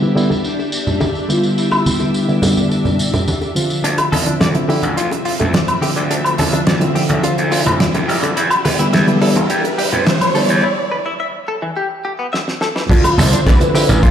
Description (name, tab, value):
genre	nu-disco, nu disco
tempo	106 BPM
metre	4/4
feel	straight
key	D dorian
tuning	A4 = 440 Hz
part	wide unison lead	melody	0.0-3.6, 12.9-14.1 s	B3 to C5	-22 LUFS	equal	ensemble chorus, dub echo
part	reed electric piano	accompaniment	0.0-13.9 s	D3 to E5	-18 LUFS	equal	sidechain pumping, low-pass filter
part	string machine, full ensemble	sustained chords	0.0-14.1 s	F3 to E6	-24 LUFS	left 1 dB	ensemble chorus, sidechain pumping
part	damped 70s drum kit	drums	0.0-14.1 s	crash cymbal, hi-hat, snare drum, tambourine, woodblock	-19 LUFS	equal	none
part	bongos and congas	percussion	0.3-14.0 s	none	-22 LUFS	right 1 dB	none
part	direct-recorded clean electric guitar	riff	3.8-14.1 s	D3 to E5	-22 LUFS	left 2 dB	analog chorus, low-pass filter, dub echo
part	gritty slap bass	bass	3.8-14.1 s	E1 to E2	-19 LUFS	equal	overdrive, high-pass filter
part	riser	sound effects	6.7-10.6 s	none	-24 LUFS	right 2 dB	none
part	kick drum	drums	12.9-14.1 s	none	-12 LUFS	equal	none
room	moderate echo chamber reverb, RT60 2.3 s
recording	played on a big sound system in a bare room, large studio reverb, high-pass filter, low-pass filter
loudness	-13 LUFS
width	side -9 dB against mid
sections	0.0-3.8 A section; 3.8-12.9 B section; 12.9-14.1 C section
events	build-up 3.8-12.9; riser 6.7-10.6; break 10.6-12.9; drum fill 12.3-12.9; drop 12.9-14.1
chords	0.0 Em7; 3.8 Dm9; 8.4 Em7; 12.9 Dm9